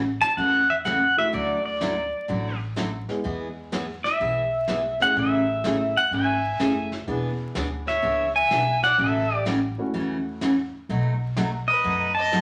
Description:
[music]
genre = country, western swing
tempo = 126 BPM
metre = 4/4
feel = swing 67% on 8ths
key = A major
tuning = A4 = 439 Hz
[part]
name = picked steel-string acoustic guitar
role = accompaniment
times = 0.0-12.4 s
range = B2 to G#4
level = -30 LUFS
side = equal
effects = none
[part]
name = upright bass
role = bass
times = 0.0-12.4 s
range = E1 to F#2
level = -34 LUFS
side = equal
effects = none
[part]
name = pedal steel guitar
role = melody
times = 0.2-12.4 s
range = D5 to A5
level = -24 LUFS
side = equal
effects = none
[part]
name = vintage brush drum kit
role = drums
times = 0.2-12.4 s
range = brushed snare drum, hi-hat, snare drum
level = -39 LUFS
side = equal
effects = none
[part]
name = dark upright piano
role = accompaniment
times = 1.2-10.4 s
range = G#3 to G#4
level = -34 LUFS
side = equal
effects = none
[part]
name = rich fiddle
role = second line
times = 6.1-12.4 s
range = A4 to E5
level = -33 LUFS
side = equal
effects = none
[sound]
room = wet studio reverb, RT60 0.7 s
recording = vinyl crackle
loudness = -24 LUFS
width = mono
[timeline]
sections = 0.0-12.4 A section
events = none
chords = 0.0 A6; 1.3 Dadd9; 3.2 E; 5.2 Amaj7; 7.1 E7; 9.0 A6; 10.9 B7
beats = 0.38 0.86 | 1.33 1.81 2.29 2.77 | 3.25 3.73 4.21 4.68 | 5.16 5.64 6.12 6.60 | 7.08 7.55 8.03 8.51 | 8.99 9.46 9.94 10.42 | 10.90 11.37 11.85 12.33

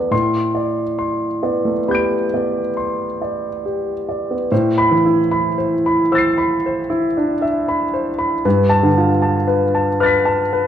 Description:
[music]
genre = classical, impressionist solo piano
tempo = 67-80 BPM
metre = 5/4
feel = rubato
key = A minor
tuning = A4 = 444 Hz
[part]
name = warm grand piano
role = solo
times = 0.0-10.7 s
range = G2 to D7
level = -15 LUFS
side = equal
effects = none
[sound]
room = wet recital hall reverb, RT60 1.6 s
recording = dark, warm production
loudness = -15 LUFS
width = side -10 dB against mid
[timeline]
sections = 0.0-4.5 A section; 4.5-10.7 A section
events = none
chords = 0.1 Am11; 4.5 Amadd9; 8.4 G9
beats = | 0.12 0.99 1.88 2.77 3.65 | 4.51 5.31 6.12 6.90 7.68 | 8.45 9.21 9.98

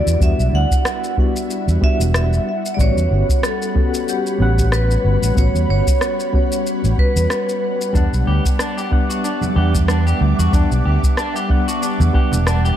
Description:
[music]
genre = sunset chillout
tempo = 93 BPM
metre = 4/4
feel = swing 56% on 16ths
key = E dorian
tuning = A4 = 440 Hz
[part]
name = vibraphone with medium hard mallets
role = melody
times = 0.0-7.9 s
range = G4 to F#5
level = -23 LUFS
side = right 1 dB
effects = ping-pong delay
[part]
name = soft electric-piano-like synth keys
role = accompaniment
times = 0.0-12.8 s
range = G3 to F#5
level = -24 LUFS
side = moving between left 6 dB and right 3 dB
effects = chorus, tremolo, auto-pan, low-pass filter, digital delay
[part]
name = ethereal airy pad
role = sustained chords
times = 0.0-12.8 s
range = G3 to D6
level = -26 LUFS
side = right 1 dB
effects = ensemble chorus, built-in reverb
[part]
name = fingered electric bass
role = bass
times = 0.1-12.7 s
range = E1 to E2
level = -16 LUFS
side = equal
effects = none
[part]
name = electronic shaker and rim click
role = drums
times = 0.1-12.8 s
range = none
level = -26 LUFS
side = left 1 dB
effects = none
[part]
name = electronic kick drum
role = drums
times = 0.2-12.3 s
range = none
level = -17 LUFS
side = equal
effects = none
[part]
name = electric guitar through a small old amp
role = arpeggios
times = 7.9-12.8 s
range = D4 to G4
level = -25 LUFS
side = left 1 dB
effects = digital delay
[part]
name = congas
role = percussion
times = 9.4-12.4 s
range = none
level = -26 LUFS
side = right 4 dB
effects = none
[sound]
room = light reverb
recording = dark, warm production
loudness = -15 LUFS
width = side -10 dB against mid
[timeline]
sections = 0.0-12.8 A section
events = filter sweep on synth keys 0.0-12.8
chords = 0.0 Em9; 2.5 A13; 8.0 Em9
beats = | 0.21 0.85 1.50 2.14 | 2.79 3.43 4.08 4.72 | 5.37 6.01 6.66 7.30 | 7.95 8.60 9.24 9.88 | 10.53 11.18 11.82 12.47

